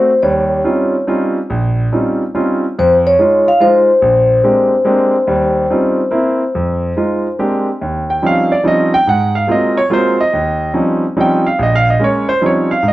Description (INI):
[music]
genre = jazz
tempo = 143 BPM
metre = 3/4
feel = swing 66% on 8ths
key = Eb mixolydian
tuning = A4 = 439 Hz
[part]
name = vibraphone with soft mallets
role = melody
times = 0.0-7.4 s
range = C5 to F5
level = -12 LUFS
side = left 1 dB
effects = none
[part]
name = clear concert grand piano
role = accompaniment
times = 0.0-12.9 s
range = Bb1 to G5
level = -13 LUFS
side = right 1 dB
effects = none
[sound]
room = wet club reverb, RT60 0.8 s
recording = worn, warbling old tape, cassette tape, warbly pitch drift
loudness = -11 LUFS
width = side -16 dB against mid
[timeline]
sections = 0.0-7.8 A section; 7.8-12.9 B section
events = none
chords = 0.2 Eb13; 2.8 Fm7; 4.0 Bb13; 5.3 Eb13; 6.1 C7; 6.5 Fm7; 7.4 Bb13; 7.8 Eb13; 9.1 Ab13; 10.3 Eb13; 11.6 Bbm7; 12.4 Eb13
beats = | 0.23 0.65 1.07 | 1.49 1.91 2.33 | 2.75 3.17 3.59 | 4.01 4.44 4.86 | 5.28 5.70 6.12 | 6.54 6.96 7.38 | 7.80 8.22 8.64 | 9.06 9.48 9.90 | 10.32 10.74 11.16 | 11.58 12.00 12.42 | 12.84